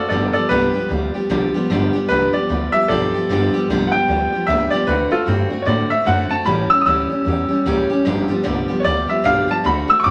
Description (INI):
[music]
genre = rockabilly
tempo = 151 BPM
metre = 4/4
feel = swing 61% on 8ths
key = unclear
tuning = A4 = 440 Hz
[part]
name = bright upright piano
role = melody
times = 0.0-10.1 s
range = F4 to E6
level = -20 LUFS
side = equal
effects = none
[part]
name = picked steel-string acoustic guitar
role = accompaniment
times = 0.0-10.1 s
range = G2 to G4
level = -22 LUFS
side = equal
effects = none
[part]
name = upright bass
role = bass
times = 0.1-10.1 s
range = G1 to A2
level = -26 LUFS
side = equal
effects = none
[sound]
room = wet large studio reverb, RT60 1.4 s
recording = none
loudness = -18 LUFS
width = mono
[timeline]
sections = 0.0-10.1 A section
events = upright piano solo 0.0-10.1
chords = 0.1 G7; 4.9 D7; 6.5 A7; 8.1 G7